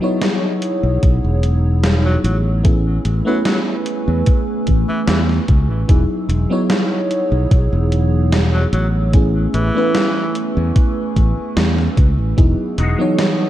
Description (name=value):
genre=vaporwave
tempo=74 BPM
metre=4/4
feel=swing 53% on 16ths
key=A lydian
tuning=A4 = 440 Hz
part: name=FM electric piano with soft pad layer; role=accompaniment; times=0.0-13.5 s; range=E3 to C#5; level=-20 LUFS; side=equal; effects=lush chorus, analog delay
part: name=warbly tape-like pad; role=sustained chords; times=0.0-13.5 s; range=A3 to E6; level=-28 LUFS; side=right 4 dB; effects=chorus, built-in reverb
part: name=gated 80s digital drum machine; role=drums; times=0.2-13.4 s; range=hi-hat, snare drum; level=-21 LUFS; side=equal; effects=gated reverb, gated reverb snare, studio reverb
part: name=modern bright fingered electric bass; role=bass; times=0.8-12.9 s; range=E1 to E2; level=-16 LUFS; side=equal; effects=none
part: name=electronic kick drum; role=drums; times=1.0-12.6 s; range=none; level=-13 LUFS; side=equal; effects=studio reverb
part: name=edgy tenor saxophone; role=melody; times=2.1-10.4 s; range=E3 to F#3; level=-27 LUFS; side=equal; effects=tape echo
part: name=electric guitar with an envelope filter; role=riff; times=12.8-13.0 s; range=G#3 to F#4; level=-28 LUFS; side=left 2 dB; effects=ensemble chorus, analog delay
room=light reverb, digital ambience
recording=dark, warm production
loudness=-14 LUFS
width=side -13 dB against mid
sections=0.0-13.5 A section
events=none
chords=0.0 Emaj9; 2.6 Amaj7; 5.9 Emaj9; 9.1 Amaj7; 12.4 Emaj9